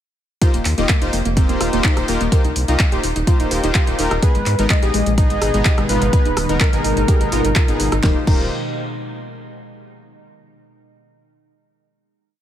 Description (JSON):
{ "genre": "progressive house", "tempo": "126 BPM", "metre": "4/4", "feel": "straight", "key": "Eb major", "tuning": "A4 = 435 Hz", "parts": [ { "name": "soft round pluck", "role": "arpeggios", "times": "0.4-8.5 s", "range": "Ab3 to Cb5", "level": "-24 LUFS", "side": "equal", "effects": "wide subtle chorus, cassette tape, sidechain pumping, tape echo" }, { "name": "soft supersaw", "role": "stabs", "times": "0.4-8.5 s", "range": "Bb3 to Eb5", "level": "-24 LUFS", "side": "left 2 dB", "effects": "cassette tape, sidechain pumping, tape echo" }, { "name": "deep house drum kit", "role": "drums", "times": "0.4-8.4 s", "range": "crash cymbal, handclaps, hi-hat, rim click, snare drum", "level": "-23 LUFS", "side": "equal", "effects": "none" }, { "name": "electronic kick drum", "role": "drums", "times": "0.4-8.4 s", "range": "none", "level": "-16 LUFS", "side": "equal", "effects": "none" }, { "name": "round analog bass", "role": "bass", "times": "0.5-8.5 s", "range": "Eb1 to Ab2", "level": "-22 LUFS", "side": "equal", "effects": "sidechain pumping" }, { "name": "wide unison lead", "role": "melody", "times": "4.2-8.5 s", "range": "Bb4 to Eb5", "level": "-24 LUFS", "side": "equal", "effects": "vintage 12-bit sampler grit, digital delay" }, { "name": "evolving wavetable pad", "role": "sustained chords", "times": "5.0-8.3 s", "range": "Cb3 to Bb5", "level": "-27 LUFS", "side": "equal", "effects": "chorus, built-in reverb, sidechain pumping" } ], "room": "digital ambience", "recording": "none", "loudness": "-15 LUFS", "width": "side -11 dB against mid", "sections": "0.4-8.0 drop; 8.0-9.9 final chord", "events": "drop 0.4-8.0", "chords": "0.4 Eb69; 4.2 Abm; 8.0 Eb69", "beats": "| 0.42 0.89 1.37 1.84 | 2.32 2.80 3.27 3.75 | 4.22 4.70 5.18 5.65 | 6.13 6.61 7.08 7.56 | 8.04" }